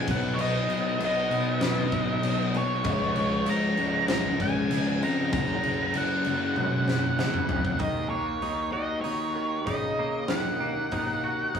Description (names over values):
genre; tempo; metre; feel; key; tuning
quiet-loud alternative rock; 97 BPM; 4/4; straight; unclear; A4 = 441 Hz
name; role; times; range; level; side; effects
octave-fuzz lead guitar; melody; 0.0-11.6 s; C#5 to A#5; -29 LUFS; right 1 dB; distortion, analog delay
thick fuzz guitar; riff; 0.0-7.8 s; F#2 to C#4; -31 LUFS; left 4 dB; distortion
thick fuzz guitar; riff; 0.0-7.8 s; F#2 to D#4; -33 LUFS; right 2 dB; distortion
fuzz picked electric bass; bass; 0.0-11.6 s; F#1 to C#3; -31 LUFS; left 2 dB; overdrive
huge arena drum kit; drums; 0.1-11.6 s; crash cymbal, hi-hat, kick drum, snare drum, toms; -30 LUFS; left 1 dB; none
twangy electric guitar; arpeggios; 7.8-11.6 s; D#3 to F#4; -33 LUFS; right 4 dB; vibrato effect
room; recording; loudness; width
moderate small room ambience, RT60 0.5 s; rough rehearsal-room recording, small room ambience; -24 LUFS; side -7 dB against mid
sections
0.0-7.8 A section; 7.8-11.6 B section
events
drum fill 6.6-7.8; half time 7.8-11.6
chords
0.1 B; 2.9 C#6; 5.3 F#; 7.8 D#m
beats
| 0.38 1.00 1.62 2.23 | 2.85 3.47 4.09 4.71 | 5.33 5.95 6.57 7.19 | 7.81 8.43 9.05 9.68 | 10.30 10.93 11.55